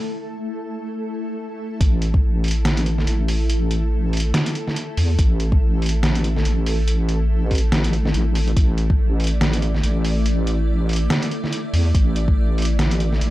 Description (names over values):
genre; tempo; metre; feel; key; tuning
deep dubstep; 142 BPM; 4/4; swing 58% on 16ths, half-time; unclear; A4 = 441 Hz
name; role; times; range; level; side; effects
granular cloud pad; sustained chords; 0.0-13.3 s; A3 to D5; -28 LUFS; equal; built-in reverb
deep soft wobble bass; bass; 1.8-13.3 s; A1 to E2; -19 LUFS; equal; chorus
electronic kick drum; drums; 1.8-2.2, 5.2-9.0, 11.9-12.4 s; none; -17 LUFS; equal; studio ambience
trip hop sampler-style drum kit; drums; 1.8-13.3 s; hi-hat, snare drum; -24 LUFS; equal; overdrive, studio ambience
room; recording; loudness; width
digital ambience; dry, gritty hardware recording; -18 LUFS; side -16 dB against mid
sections
0.0-1.8 A section; 1.8-13.3 B section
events
build-up 0.0-1.8; filter sweep on ambient pad 0.0-1.8; break 0.1-1.8; drop 1.8-13.3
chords
0.0 A5